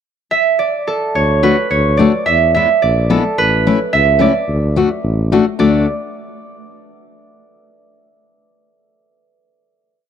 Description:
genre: alpine folk, alpine dance band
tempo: 108 BPM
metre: 2/4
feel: straight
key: D major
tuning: A4 = 440 Hz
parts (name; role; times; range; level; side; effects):
- concert harp; melody; 0.3-5.9 s; A4 to E5; -15 LUFS; right 4 dB; none
- mellow tuba; bass; 1.2-5.9 s; A1 to E2; -17 LUFS; equal; none
- fingerpicked steel-string acoustic guitar; accompaniment; 1.4-5.9 s; G#3 to F#4; -15 LUFS; left 5 dB; none
room: small room ambience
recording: dry, close 1970s-style studio recording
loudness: -12 LUFS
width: side -8 dB against mid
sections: 0.0-1.2 pickup bar; 1.2-5.6 A section; 5.6-6.7 final chord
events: none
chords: 0.0 N.C.; 1.2 D; 2.3 E; 3.4 Aadd9; 4.5 D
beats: | 0.04 0.59 | 1.15 1.71 | 2.27 2.82 | 3.37 3.92 | 4.47 5.02 | 5.58

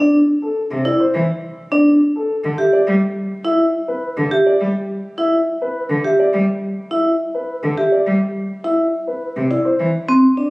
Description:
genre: classical, minimalist pattern music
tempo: 104 BPM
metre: 3/4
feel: straight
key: unclear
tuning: A4 = 440 Hz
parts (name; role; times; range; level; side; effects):
- dark concert grand piano; melody; 0.0-10.5 s; A4 to E5; -21 LUFS; left 1 dB; none
- vibraphone with medium mallets; arpeggios; 0.0-10.5 s; C4 to G4; -16 LUFS; equal; none
- clear cello; accompaniment; 0.7-9.9 s; C3 to G3; -20 LUFS; equal; none
room: wet recital hall reverb, RT60 1.8 s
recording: recorded on a phone in the room, club reverb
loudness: -15 LUFS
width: side -22 dB against mid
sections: 0.0-10.5 A section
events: none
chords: 0.0 Dsus2; 2.3 Em/D; 9.2 D7sus2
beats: | 0.57 1.14 1.72 | 2.30 2.87 3.45 | 4.03 4.60 5.18 | 5.76 6.33 6.91 | 7.49 8.07 8.64 | 9.22 9.80 10.37

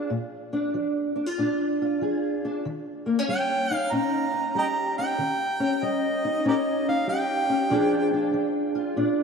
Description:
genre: acoustic country blues, solo or duo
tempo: 95 BPM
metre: 4/4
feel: swing 66% on 8ths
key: unclear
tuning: A4 = 438 Hz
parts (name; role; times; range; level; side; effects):
- fingerpicked steel-string acoustic guitar; accompaniment; 0.0-9.2 s; Bb2 to Ab4; -24 LUFS; left 1 dB; ensemble chorus
- warm harmonica; melody; 3.3-8.3 s; G4 to Bb5; -26 LUFS; right 2 dB; tape echo
room: wet plate reverb, RT60 3.8 s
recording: dreamy mix soaked in reverb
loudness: -23 LUFS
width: side -5 dB against mid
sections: 0.0-9.2 A section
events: none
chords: 0.0 Bb7; 2.6 Eb7; 7.7 Bb7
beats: | 0.10 0.74 1.37 2.01 | 2.64 3.28 3.91 4.54 | 5.18 5.81 6.44 7.08 | 7.71 8.34 8.97

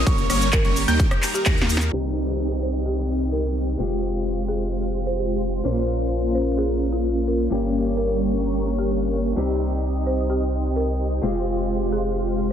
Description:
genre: EDM, festival progressive house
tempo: 129 BPM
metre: 4/4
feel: straight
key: unclear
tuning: A4 = 440 Hz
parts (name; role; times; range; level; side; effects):
- lush unison pad; sustained chords; 0.0-12.5 s; G3 to Eb6; -34 LUFS; equal; chorus, phaser, sidechain pumping
- warm baby grand piano; arpeggios; 0.0-1.7 s; Db6 to Bb6; -28 LUFS; right 2 dB; sidechain pumping, tape echo
- supersaw chords; riff; 0.0-12.5 s; G3 to Bb5; -25 LUFS; right 1 dB; phaser, sidechain pumping, low-pass filter, tape echo
- saturated sub bass; bass; 0.0-12.5 s; F1 to Eb2; -25 LUFS; equal; tube saturation, sidechain pumping
- big-room dance drum kit; drums; 0.1-12.5 s; handclaps, hi-hat, ride cymbal, rim click, shaker, snare drum; -25 LUFS; equal; none
- electronic kick drum; drums; 0.1-1.6 s; none; -20 LUFS; equal; none
- folk marimba with medium hard mallets; melody; 0.5-12.1 s; F4 to C5; -30 LUFS; right 1 dB; tape echo
- picked old ladder-braced acoustic guitar; accompaniment; 1.9-12.5 s; G2 to C5; -29 LUFS; left 4 dB; sidechain pumping, tape echo
- downlifter; sound effects; 2.0-5.6 s; none; -37 LUFS; right 1 dB; none
room: light reverb, digital ambience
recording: low-pass filter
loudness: -20 LUFS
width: side -9 dB against mid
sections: 0.0-1.9 A section; 1.9-12.5 B section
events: drop 0.0-1.9; drum fill 1.5-1.9; filter sweep on analog synth pad 1.9-12.5; filter sweep 1.9-12.5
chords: 0.1 Gdim; 1.0 Eb; 1.9 Cm; 3.8 Fmadd9; 5.6 Bbmadd9; 7.5 Gdim; 9.4 Cm; 11.2 Fmadd9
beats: | 0.07 0.53 1.00 1.46 | 1.93 2.39 2.86 3.32 | 3.79 4.25 4.72 5.18 | 5.65 6.11 6.58 7.04 | 7.51 7.97 8.44 8.90 | 9.37 9.83 10.30 10.76 | 11.23 11.69 12.16

